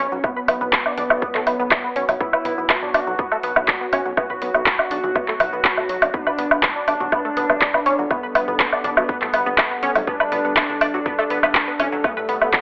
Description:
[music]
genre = melodic techno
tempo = 122 BPM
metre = 4/4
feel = straight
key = B minor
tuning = A4 = 440 Hz
[part]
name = fat analog lead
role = melody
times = 0.0-12.6 s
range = A3 to F#4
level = -26 LUFS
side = equal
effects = lush chorus, sidechain pumping, tape echo
[part]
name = deep dark ambient pad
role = sustained chords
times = 0.4-12.6 s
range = G3 to C#5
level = -32 LUFS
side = equal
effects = chorus, built-in reverb, sidechain pumping
[part]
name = tight sequenced synth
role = arpeggios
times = 0.0-12.6 s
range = F#3 to D6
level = -23 LUFS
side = equal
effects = chorus, phaser, sidechain pumping, digital delay
[part]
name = round analog bass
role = bass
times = 0.0-12.5 s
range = F#1 to B1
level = -34 LUFS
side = equal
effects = sidechain pumping
[part]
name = house drum kit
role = drums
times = 0.1-12.6 s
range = handclaps, hi-hat, shaker, toms, woodblock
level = -18 LUFS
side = equal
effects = sidechain pumping on hats, sidechain pumping on toms, sidechain pumping on perc, sidechain pumping on cymbals
[part]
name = electronic kick drum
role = drums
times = 0.2-12.6 s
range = none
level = -25 LUFS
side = equal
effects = none
[sound]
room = moderate recital hall reverb, RT60 1.4 s, digital ambience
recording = telephone sound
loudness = -17 LUFS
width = side -26 dB against mid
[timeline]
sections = 0.0-12.6 A section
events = none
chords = 0.0 Bm; 6.1 G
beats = | 0.24 0.73 1.22 1.71 | 2.21 2.70 3.19 3.68 | 4.17 4.66 5.16 5.65 | 6.14 6.63 7.12 7.62 | 8.11 8.60 9.09 9.58 | 10.07 10.57 11.06 11.55 | 12.04 12.53

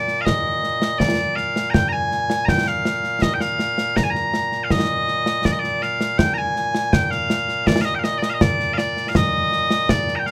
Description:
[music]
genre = scottish traditional, Scottish pipe music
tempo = 81 BPM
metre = 3/4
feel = straight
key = Bb mixolydian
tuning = A4 = 440 Hz
[part]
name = loud bright bagpipes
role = melody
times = 0.0-10.3 s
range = Bb2 to Bb5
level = -23 LUFS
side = equal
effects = none
[part]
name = concert snare drum and concert bass drum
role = drums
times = 0.1-10.3 s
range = none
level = -24 LUFS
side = equal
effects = none
[sound]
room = light reverb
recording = rough home demo mix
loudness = -20 LUFS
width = mono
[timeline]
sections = 0.0-4.7 A section; 4.7-10.3 A section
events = none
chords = none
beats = | 0.26 1.00 1.74 | 2.48 3.23 3.96 | 4.71 5.45 6.19 | 6.93 7.67 8.41 | 9.15 9.89

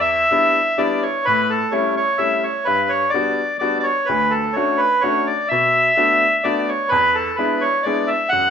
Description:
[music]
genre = musette waltz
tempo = 127 BPM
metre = 3/4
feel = straight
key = unclear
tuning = A4 = 441 Hz
[part]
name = bandoneon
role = melody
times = 0.0-8.5 s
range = A4 to F#5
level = -16 LUFS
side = equal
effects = none
[part]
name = bright upright piano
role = accompaniment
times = 0.0-8.5 s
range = D2 to F#4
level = -22 LUFS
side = left 3 dB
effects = none
[sound]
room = wet studio reverb, RT60 0.9 s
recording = band playing live in one room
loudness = -15 LUFS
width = side -7 dB against mid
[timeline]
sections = 0.0-8.5 A section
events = none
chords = 0.0 Em7; 1.3 A7; 2.7 Gmaj7; 4.1 Dmaj7; 5.5 Bm7; 6.9 E7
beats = 0.33 0.79 | 1.26 1.73 2.20 | 2.67 3.14 3.62 | 4.09 4.57 5.04 | 5.52 5.99 6.46 | 6.93 7.40 7.86 | 8.33

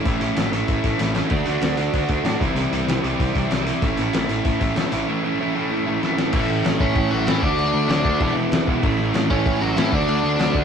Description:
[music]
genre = punk rock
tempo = 191 BPM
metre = 4/4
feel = straight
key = A mixolydian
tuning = A4 = 440 Hz
[part]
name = distorted electric guitar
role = riff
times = 0.0-10.6 s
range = A2 to F#4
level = -23 LUFS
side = right 4 dB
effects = distortion
[part]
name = tight distorted guitar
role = riff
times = 0.0-10.6 s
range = E2 to D4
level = -27 LUFS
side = left 5 dB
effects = distortion
[part]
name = overdriven picked electric bass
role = bass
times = 0.1-10.6 s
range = E1 to A2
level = -26 LUFS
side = left 1 dB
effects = none
[part]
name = lo-fi sampler-style drum kit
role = drums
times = 0.1-10.6 s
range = crash cymbal, hi-hat, kick drum, snare drum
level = -24 LUFS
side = left 1 dB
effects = none
[part]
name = overdriven electric guitar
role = melody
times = 6.8-10.6 s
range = E3 to D5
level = -24 LUFS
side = left 1 dB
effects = tape echo
[sound]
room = moderate small room ambience, RT60 0.5 s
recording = rough rehearsal-room recording, tube saturation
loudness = -18 LUFS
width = side -7 dB against mid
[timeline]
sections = 0.0-6.3 A section; 6.3-10.6 B section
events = drum fill 1.0-1.3, 6.0-6.3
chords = 0.0 A; 1.3 D; 2.4 C; 3.8 A; 7.4 D; 8.2 E; 8.8 A; 9.9 D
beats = | 0.05 0.36 0.68 0.99 | 1.31 1.62 1.94 2.25 | 2.56 2.88 3.19 3.50 | 3.82 4.13 4.45 4.76 | 5.08 5.39 5.70 6.01 | 6.33 6.64 6.95 7.27 | 7.58 7.89 8.20 8.52 | 8.83 9.14 9.45 9.76 | 10.07 10.39

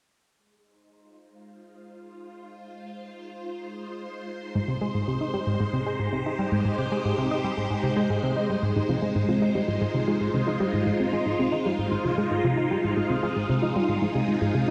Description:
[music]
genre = ambient, sequencer-driven space music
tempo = 114 BPM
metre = 4/4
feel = straight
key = unclear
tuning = A4 = 440 Hz
[part]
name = phased string machine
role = sustained chords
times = 1.4-14.7 s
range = Ab3 to C5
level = -30 LUFS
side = equal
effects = ensemble chorus, phaser
[part]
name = tight sequenced synth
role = riff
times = 4.6-14.7 s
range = Ab2 to Eb4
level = -28 LUFS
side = equal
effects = chorus, delay
[part]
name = soft round pluck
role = arpeggios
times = 8.8-14.7 s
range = Eb4 to Ab4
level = -34 LUFS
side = equal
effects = none
[sound]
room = wet concert hall reverb, RT60 2.1 s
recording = dark, warm production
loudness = -26 LUFS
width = mono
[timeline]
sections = 0.3-8.8 A section; 8.8-14.7 B section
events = fade-in on string machine 0.3-8.8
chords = 0.3 Ab6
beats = | 0.34 0.87 1.39 1.92 | 2.44 2.97 3.50 4.02 | 4.55 5.08 5.60 6.13 | 6.66 7.18 7.71 8.23 | 8.76 9.29 9.81 10.34 | 10.87 11.39 11.92 12.44 | 12.97 13.50 14.02 14.55

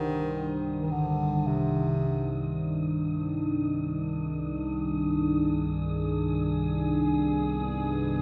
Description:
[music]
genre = dark ambient drone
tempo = free time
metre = none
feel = none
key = unclear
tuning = A4 = 445 Hz
[part]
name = clear bass clarinet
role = melody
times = 0.0-2.6 s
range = C3 to Eb3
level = -33 LUFS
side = equal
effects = analog delay
[part]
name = sweeping resonant pad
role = sustained chords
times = 0.0-8.2 s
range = Eb3 to C5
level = -30 LUFS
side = equal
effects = chorus, phaser
[part]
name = analog drone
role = drone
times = 0.0-8.2 s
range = C2 to G2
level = -37 LUFS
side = equal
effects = chorus
[part]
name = wind-like tuned noise texture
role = texture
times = 0.1-8.2 s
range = Eb6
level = -50 LUFS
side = equal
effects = built-in reverb
[sound]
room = moderate plate reverb, RT60 2.3 s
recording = echo-heavy mix, nothing above 10.5 kHz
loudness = -28 LUFS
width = mono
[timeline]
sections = 0.0-8.2 A section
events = fade-in on synth texture 0.0-8.2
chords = 0.0 Cm; 3.6 Abm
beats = free time

